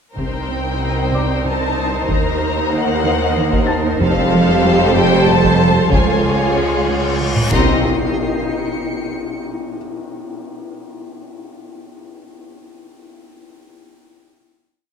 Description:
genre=cinematic, suspense film score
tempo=94 BPM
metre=3/4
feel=straight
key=C dorian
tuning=A4 = 441 Hz
part: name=dark symphonic violin section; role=melody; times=0.2-7.9 s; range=F5 to C6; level=-22 LUFS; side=left 3 dB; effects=none
part: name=rich symphonic violin section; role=second line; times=0.2-7.9 s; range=Ab4 to Eb5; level=-22 LUFS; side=left 2 dB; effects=none
part: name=rich symphonic viola section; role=accompaniment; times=0.2-7.9 s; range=G3 to G4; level=-22 LUFS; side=right 1 dB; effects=none
part: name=twinkling granular texture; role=sustained chords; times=0.8-7.9 s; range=Eb4 to G5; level=-24 LUFS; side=equal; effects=built-in reverb
part: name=warm symphonic cello section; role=riff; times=0.2-7.4 s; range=F2 to Eb4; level=-23 LUFS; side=equal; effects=none
part: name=clear symphonic double bass section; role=bass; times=0.2-7.9 s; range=F1 to Eb2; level=-21 LUFS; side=right 2 dB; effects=none
part: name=rich symphonic cello section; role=bass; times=0.2-7.9 s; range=C2 to F2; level=-23 LUFS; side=right 3 dB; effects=none
part: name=taiko ensemble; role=drums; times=0.2-8.8 s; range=none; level=-22 LUFS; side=equal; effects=none
part: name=felt-muted upright piano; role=texture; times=1.1-5.9 s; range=D5 to A6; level=-29 LUFS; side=left 1 dB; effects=none
part: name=cymbal swell and tam-tam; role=percussion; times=4.0-10.0 s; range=none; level=-25 LUFS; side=left 3 dB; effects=none
part: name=rich symphonic violin section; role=texture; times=4.0-9.4 s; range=F5 to Db7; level=-29 LUFS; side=left 5 dB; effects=none
part: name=reverse cymbal and impact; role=sound effects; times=6.3-9.4 s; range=none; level=-27 LUFS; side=left 2 dB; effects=none
room=wet scoring stage reverb, RT60 2.1 s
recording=none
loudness=-14 LUFS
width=side -6 dB against mid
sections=0.2-7.8 A section; 7.8-9.8 final note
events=reverse cymbal 6.3-7.8; drum fill 7.4-7.8; band accent 7.8-8.5; impact 7.8-9.8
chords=0.2 Cm7; 2.1 Ebm6; 4.0 Fadd9; 5.9 Db; 7.5 Cm7; 7.8 N.C.

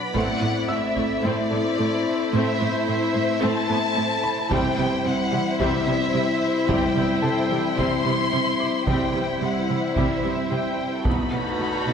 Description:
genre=cinematic, hybrid orchestral and electronic film score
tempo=110 BPM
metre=4/4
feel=straight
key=unclear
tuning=A4 = 440 Hz
part: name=dark symphonic violin section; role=melody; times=0.0-11.9 s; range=D5 to C6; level=-28 LUFS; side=left 3 dB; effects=none
part: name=rich studio violin section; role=second line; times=0.0-11.9 s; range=D4 to D5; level=-29 LUFS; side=left 2 dB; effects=none
part: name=mellow French horn section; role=sustained chords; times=0.0-11.9 s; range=A3 to F#4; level=-28 LUFS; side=left 6 dB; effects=none
part: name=sweeping resonant pad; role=sustained chords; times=0.0-11.9 s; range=F#3 to F#5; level=-29 LUFS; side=right 2 dB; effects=chorus
part: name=felt-muted upright piano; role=texture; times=0.0-11.9 s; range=A4 to E6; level=-36 LUFS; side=equal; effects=none
part: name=rich symphonic viola section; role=accompaniment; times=0.1-11.9 s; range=G3 to D#4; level=-30 LUFS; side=right 1 dB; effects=none
part: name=thumb-piano-like synth pluck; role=arpeggios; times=0.1-11.9 s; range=C3 to A4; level=-31 LUFS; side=right 4 dB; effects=chorus, ping-pong delay
part: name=warm symphonic cello section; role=bass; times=0.1-11.9 s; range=A2 to C3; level=-29 LUFS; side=right 3 dB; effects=none
part: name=taiko ensemble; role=drums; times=0.1-1.2, 4.5-11.6 s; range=none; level=-30 LUFS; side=right 1 dB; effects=none
part: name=reverse cymbal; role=sound effects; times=11.3-11.9 s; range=none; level=-32 LUFS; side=left 1 dB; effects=none
room=wet concert hall reverb, RT60 1.9 s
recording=none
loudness=-20 LUFS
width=side -7 dB against mid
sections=0.0-11.9 A section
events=reverse cymbal 11.3-11.9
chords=0.1 Am; 4.5 C; 11.1 B7

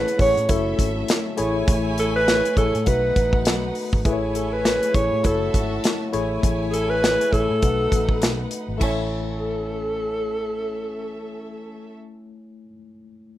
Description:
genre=lush 1970s-style soul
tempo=101 BPM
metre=4/4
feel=swing 58% on 16ths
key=A major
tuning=A4 = 440 Hz
part: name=breathy alto saxophone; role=melody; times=0.0-11.9 s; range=G#4 to C#5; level=-23 LUFS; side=right 1 dB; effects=slapback echo, plate reverb
part: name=warm studio violin section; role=second line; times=0.0-11.9 s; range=C#4 to A5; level=-34 LUFS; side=right 1 dB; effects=plate reverb
part: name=tine electric piano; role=accompaniment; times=0.0-13.4 s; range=A3 to G#5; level=-27 LUFS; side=left 2 dB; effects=medium stereo tremolo, plate reverb
part: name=dark French horn section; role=sustained chords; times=0.0-11.9 s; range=C#3 to A4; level=-37 LUFS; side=equal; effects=none
part: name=vintage muted fingered electric bass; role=bass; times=0.0-12.6 s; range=F#1 to A2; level=-28 LUFS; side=right 1 dB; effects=none
part: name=modern studio drum kit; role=drums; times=0.1-9.0 s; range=crash cymbal, hi-hat, kick drum, snare drum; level=-22 LUFS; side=equal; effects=none
room=moderate studio reverb, RT60 0.7 s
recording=rough home demo mix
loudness=-19 LUFS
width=side -14 dB against mid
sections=0.0-8.8 A section; 8.8-11.2 B section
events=none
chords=0.5 F#m7; 1.4 Amaj7; 2.9 B7; 4.1 Amaj7; 5.2 F#m7; 6.1 Amaj7; 7.6 B7; 8.8 Amaj7

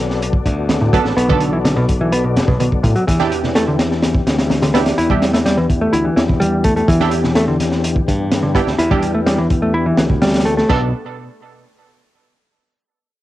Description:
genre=breakbeat, breaks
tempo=126 BPM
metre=4/4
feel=straight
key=B minor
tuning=A4 = 440 Hz
part: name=mellow tonewheel organ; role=sustained chords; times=0.0-10.9 s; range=B2 to D5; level=-24 LUFS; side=left 7 dB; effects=chorus vibrato, vintage 12-bit sampler grit, sidechain pumping, cassette tape
part: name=modern bright fingered electric bass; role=bass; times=0.0-10.9 s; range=F#1 to G2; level=-20 LUFS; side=equal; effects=none
part: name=crunchy breakbeat drum kit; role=drums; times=0.1-10.8 s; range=china cymbal, hi-hat, kick drum, snare drum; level=-18 LUFS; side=equal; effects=cassette tape
part: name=congas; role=percussion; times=0.7-10.3 s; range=none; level=-26 LUFS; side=right 6 dB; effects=none
part: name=picked electric bass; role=riff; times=0.8-10.9 s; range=A2 to E4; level=-17 LUFS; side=equal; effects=cassette tape, analog delay
part: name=orchestra-hit-like synth stab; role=stabs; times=0.9-10.9 s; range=B3 to A4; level=-21 LUFS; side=right 7 dB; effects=built-in reverb, cassette tape, analog delay
room=moderate booth ambience, RT60 0.2 s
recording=home recording on cassette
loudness=-13 LUFS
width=side -15 dB against mid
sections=0.0-10.7 A section; 10.7-12.6 B section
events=drop 0.0-10.7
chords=0.0 Bm7; 3.1 Em7; 10.7 Bm7

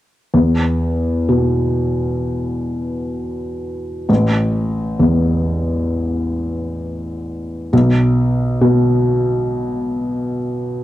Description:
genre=classical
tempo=65 BPM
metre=4/4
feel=rubato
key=unclear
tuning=A4 = 439 Hz
part: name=felt-muted upright piano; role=accompaniment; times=0.3-10.8 s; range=A1 to B2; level=-16 LUFS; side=equal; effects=none
room=small room ambience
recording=dry, close 1970s-style studio recording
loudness=-15 LUFS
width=side -14 dB against mid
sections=0.3-10.8 A section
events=none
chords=0.3 E5; 4.1 A5; 7.7 N.C.

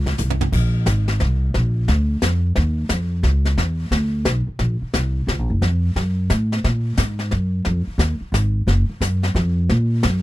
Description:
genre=jazz piano trio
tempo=177 BPM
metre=3/4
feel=swing 64% on 8ths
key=unclear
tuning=A4 = 439 Hz
part: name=upright bass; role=bass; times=0.0-10.2 s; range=Gb1 to Bb2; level=-18 LUFS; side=equal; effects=none
part: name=jazz brush drum kit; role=drums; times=0.1-10.2 s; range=brushed snare drum, crash cymbal, hi-hat, kick drum, snare drum, toms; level=-24 LUFS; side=left 1 dB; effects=none
room=little or no reverb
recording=dry, close 1970s-style studio recording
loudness=-18 LUFS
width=side -16 dB against mid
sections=0.5-8.7 A section; 8.7-10.2 B section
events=drum fill 0.2-0.5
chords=none

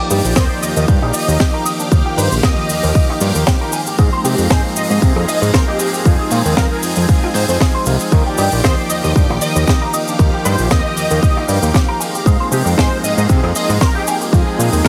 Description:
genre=nu-disco, nu disco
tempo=116 BPM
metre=4/4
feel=swing 54% on 16ths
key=Eb major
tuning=A4 = 440 Hz
part: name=warm analog pad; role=accompaniment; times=0.0-14.9 s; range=Eb3 to D5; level=-24 LUFS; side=equal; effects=chorus, sidechain pumping
part: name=string machine, full ensemble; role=sustained chords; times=0.0-14.9 s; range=Eb3 to D6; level=-29 LUFS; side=equal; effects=phaser, ensemble chorus, sidechain pumping
part: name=electric guitar with an envelope filter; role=riff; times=0.0-14.9 s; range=Bb3 to Ab5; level=-27 LUFS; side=equal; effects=analog chorus, vintage 12-bit sampler grit
part: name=unison lead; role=melody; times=0.1-14.9 s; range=G4 to Eb5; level=-25 LUFS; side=equal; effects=ensemble chorus, delay
part: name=fat analog bass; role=bass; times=0.1-14.9 s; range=Bb1 to C3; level=-19 LUFS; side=equal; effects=sidechain pumping
part: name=tight funk drum kit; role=drums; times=0.1-14.9 s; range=cabasa, hi-hat, snare drum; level=-23 LUFS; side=equal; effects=none
part: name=electronic kick drum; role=drums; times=0.4-14.9 s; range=none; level=-16 LUFS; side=equal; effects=none
room=light reverb, small room ambience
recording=heavily compressed radio sound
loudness=-15 LUFS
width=mono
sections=0.0-14.9 A section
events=none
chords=0.0 Ebmaj9; 3.7 Ab69; 6.1 Fm7; 8.1 Ebmaj9; 12.0 Ab69; 14.3 Fm7

